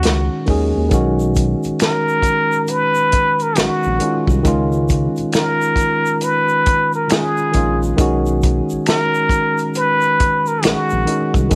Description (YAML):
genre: R&B, neo-soul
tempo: 68 BPM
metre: 4/4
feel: swing 63% on 16ths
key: unclear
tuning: A4 = 440 Hz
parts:
  - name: trumpet with plunger mute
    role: melody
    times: 0.0-11.4 s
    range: F#4 to B4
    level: -20 LUFS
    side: equal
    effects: none
  - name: tine electric piano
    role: accompaniment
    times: 0.0-11.6 s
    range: Eb3 to Ab4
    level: -22 LUFS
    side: equal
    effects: none
  - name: smooth gliding synth bass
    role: bass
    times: 0.0-11.6 s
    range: A#1 to Eb2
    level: -22 LUFS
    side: equal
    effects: none
  - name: warm soul drum kit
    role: drums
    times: 0.0-11.6 s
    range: hi-hat, kick drum, snare drum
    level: -21 LUFS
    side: equal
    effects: none
  - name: egg shaker and finger snaps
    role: percussion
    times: 0.9-11.6 s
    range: none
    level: -34 LUFS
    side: equal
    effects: none
room: little or no reverb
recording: none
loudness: -17 LUFS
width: mono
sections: 0.9-11.6 A section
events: none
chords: 0.0 Ebm7; 0.9 Bmaj9; 4.5 Dbadd9; 8.0 Bmaj9